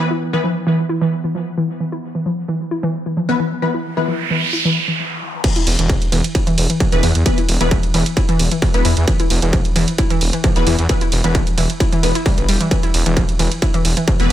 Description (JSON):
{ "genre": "driving peak-time techno", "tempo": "132 BPM", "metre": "4/4", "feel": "straight", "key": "unclear", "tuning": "A4 = 439 Hz", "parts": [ { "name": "rave stab", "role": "stabs", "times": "0.0-0.5, 3.3-4.1, 6.9-14.3 s", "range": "E3 to B4", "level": "-23 LUFS", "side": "left 3 dB", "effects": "chorus, built-in reverb, sidechain pumping, dub echo" }, { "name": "analog drone", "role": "drone", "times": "0.0-5.0 s", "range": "E3 to B3", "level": "-28 LUFS", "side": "right 3 dB", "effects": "chorus, sidechain pumping" }, { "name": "warbly dusty pluck", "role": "riff", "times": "0.1-14.1 s", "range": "E3 to E4", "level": "-20 LUFS", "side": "equal", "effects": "chorus, tube saturation, sidechain pumping, dub echo" }, { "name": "noise sweep", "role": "sound effects", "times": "4.0-5.4 s", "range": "none", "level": "-21 LUFS", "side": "right 4 dB", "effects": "none" }, { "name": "electronic kick drum", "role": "drums", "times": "5.4-14.2 s", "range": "none", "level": "-17 LUFS", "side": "equal", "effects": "distortion" }, { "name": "punchy analog drum machine", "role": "drums", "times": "5.4-14.3 s", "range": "crash cymbal, hi-hat, ride cymbal", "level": "-23 LUFS", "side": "right 3 dB", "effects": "sidechain pumping on hats, sidechain pumping on cymbals" }, { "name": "detuned saw bass", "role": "bass", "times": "5.7-14.3 s", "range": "E1 to E2", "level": "-18 LUFS", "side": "equal", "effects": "tube saturation, sidechain pumping" } ], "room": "light reverb", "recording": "none", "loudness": "-15 LUFS", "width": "side -12 dB against mid", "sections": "0.0-5.4 A section; 5.4-14.3 B section", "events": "filter sweep on synth arpeggio sound 0.0-5.4; noise sweep 4.0-5.4; stop 5.0-5.4; drop 5.4-14.3", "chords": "0.0 E5" }